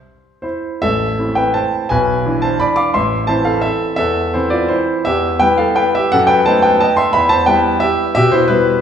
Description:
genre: classical, piano waltz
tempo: 145-193 BPM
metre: 3/4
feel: rubato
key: A minor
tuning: A4 = 440 Hz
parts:
  - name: warm grand piano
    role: solo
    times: 0.0-8.8 s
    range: A1 to D6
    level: -12 LUFS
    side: equal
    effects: none
room: wet recital hall reverb, RT60 1.5 s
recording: heard from further back in the room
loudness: -12 LUFS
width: side -8 dB against mid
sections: 0.8-8.8 A section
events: none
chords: 0.0 C; 0.8 Am; 1.9 E7/B; 2.9 Am; 5.1 Em; 6.1 B7/F#; 7.2 Em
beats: 0.03 0.44 | 0.82 1.18 1.54 | 1.90 2.25 2.60 | 2.94 3.28 3.63 | 3.99 4.34 4.70 | 5.06 5.41 5.78 | 6.13 6.47 6.83 | 7.15 7.48 7.82 | 8.16 8.49

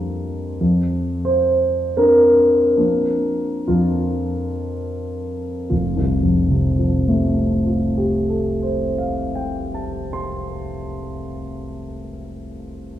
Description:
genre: classical, impressionist solo piano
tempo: 28-50 BPM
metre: 3/4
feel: rubato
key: F major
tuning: A4 = 442 Hz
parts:
  - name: warm grand piano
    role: solo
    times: 0.0-13.0 s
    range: F1 to C6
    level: -18 LUFS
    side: equal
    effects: none
room: wet recital hall reverb, RT60 1.8 s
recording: recorded in a church or concert hall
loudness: -17 LUFS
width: side -12 dB against mid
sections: 0.0-5.7 A section; 5.7-11.0 B section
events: slowing down 0.0-5.7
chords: 0.0 C11/F; 0.6 F5; 5.7 Fadd9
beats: | 0.60 1.97 3.67 | 5.69 7.45 9.20

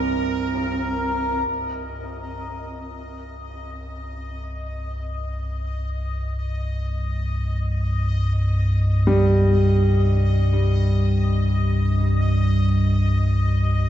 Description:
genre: dark ambient drone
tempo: free time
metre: none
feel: none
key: C minor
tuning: A4 = 440 Hz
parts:
  - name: deep dark ambient pad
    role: sustained chords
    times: 0.0-1.5 s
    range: C4 to Eb5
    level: -42 LUFS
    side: right 2 dB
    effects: none
  - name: warm grand piano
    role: arpeggios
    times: 0.0-13.9 s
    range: C2 to G3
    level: -26 LUFS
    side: right 1 dB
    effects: tape echo
  - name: deep rumbling drone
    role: drone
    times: 0.0-13.9 s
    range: C2 to G2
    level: -21 LUFS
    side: equal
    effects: built-in reverb
  - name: bubbling stepped-filter texture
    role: texture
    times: 0.0-13.9 s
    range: Bb4 to Eb5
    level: -31 LUFS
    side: left 2 dB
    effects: chorus, built-in reverb
room: wet cathedral reverb, RT60 5.6 s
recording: in a vast, echoing space, nothing above 7.8 kHz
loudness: -19 LUFS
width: side -12 dB against mid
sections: 0.0-1.5 A section; 1.5-13.9 B section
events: fade-in on synth texture 1.5-13.9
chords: 0.0 Cm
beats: free time

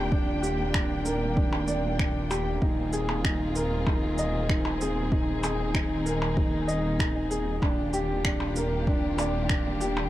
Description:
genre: piano and strings electronica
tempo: 96 BPM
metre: 4/4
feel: straight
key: Eb major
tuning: A4 = 440 Hz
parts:
  - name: dark symphonic string section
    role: sustained chords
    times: 0.0-10.1 s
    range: Eb3 to G5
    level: -33 LUFS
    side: left 1 dB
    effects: sidechain pumping
  - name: dark upright piano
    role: riff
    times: 0.0-10.1 s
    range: D4 to Eb5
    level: -29 LUFS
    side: equal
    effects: digital delay
  - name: dark detuned saw bass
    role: bass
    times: 0.0-10.1 s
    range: Eb1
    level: -31 LUFS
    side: equal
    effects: sidechain pumping
  - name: electronic kick drum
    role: drums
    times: 0.1-9.6 s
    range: none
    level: -28 LUFS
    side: equal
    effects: overdrive
  - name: electronic shaker, finger snaps and percussion blips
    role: drums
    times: 0.4-10.1 s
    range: none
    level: -33 LUFS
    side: equal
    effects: none
room: little or no reverb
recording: dark, warm production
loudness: -24 LUFS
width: side -14 dB against mid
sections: 0.0-10.1 A section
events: none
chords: 0.0 Ebmaj7; 2.6 Bb7sus4/Eb; 7.6 Ebmaj7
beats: | 0.12 0.75 1.37 2.00 | 2.62 3.25 3.87 4.50 | 5.12 5.75 6.37 7.00 | 7.62 8.25 8.87 9.50

